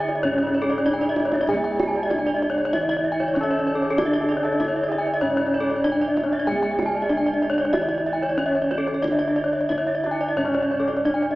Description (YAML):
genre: Balinese gamelan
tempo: 95 BPM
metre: 4/4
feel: uneven beats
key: C# pelog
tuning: A4 = 442 Hz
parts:
  - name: gamelan-type bronze metallophone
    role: melody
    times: 0.0-11.4 s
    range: C#4 to G#4-45c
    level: -25 LUFS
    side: equal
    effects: slapback echo
  - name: felt-muted upright piano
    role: second line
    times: 0.0-11.4 s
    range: C#4 to C#5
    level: -32 LUFS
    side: left 1 dB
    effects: none
  - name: gamelan-type bronze metallophone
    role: accompaniment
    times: 0.0-11.4 s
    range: C#3 to G#3-45c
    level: -38 LUFS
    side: right 1 dB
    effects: none
  - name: gamelan-type bronze metallophone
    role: arpeggios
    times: 0.0-11.4 s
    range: A4-40c to A5-40c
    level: -25 LUFS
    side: left 1 dB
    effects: none
  - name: gamelan-type bossed gongs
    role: bass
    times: 0.0-11.4 s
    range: C#2 to G#4-45c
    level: -33 LUFS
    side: equal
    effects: none
  - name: gamelan-type bronze metallophone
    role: arpeggios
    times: 0.1-11.3 s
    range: C#5 to G#5-45c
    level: -26 LUFS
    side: right 1 dB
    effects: none
  - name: kendang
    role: percussion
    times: 0.1-11.2 s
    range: none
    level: -31 LUFS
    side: right 1 dB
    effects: none
room: wet huge ambient reverb, RT60 4.1 s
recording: small speaker sound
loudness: -20 LUFS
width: side -18 dB against mid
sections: 0.0-11.4 A section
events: drum fill 0.7-1.5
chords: none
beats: 0.24 0.86 | 1.49 2.11 2.73 3.35 | 3.98 4.60 5.22 5.85 | 6.47 7.10 7.73 8.38 | 9.03 9.69 10.37 11.05